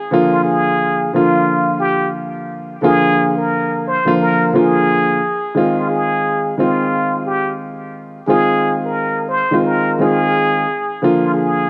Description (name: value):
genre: hip hop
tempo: 88 BPM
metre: 4/4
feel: swing 59% on 16ths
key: F dorian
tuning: A4 = 439 Hz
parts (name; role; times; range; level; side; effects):
- trumpet with plunger mute; melody; 0.0-11.7 s; F4 to C5; -20 LUFS; equal; high-pass filter, low-pass filter, digital delay
- dark concert grand piano; accompaniment; 0.1-11.7 s; D3 to F4; -18 LUFS; equal; high-pass filter, low-pass filter
room: moderate echo chamber reverb, RT60 2.3 s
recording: dark, warm production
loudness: -16 LUFS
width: mono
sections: 0.0-5.6 A section; 5.6-11.7 B section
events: none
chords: 0.1 Bb; 5.6 Fm7; 11.0 Bb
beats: | 0.11 0.80 1.48 2.16 | 2.84 3.52 4.21 4.89 | 5.57 6.25 6.93 7.61 | 8.30 8.98 9.66 10.34 | 11.02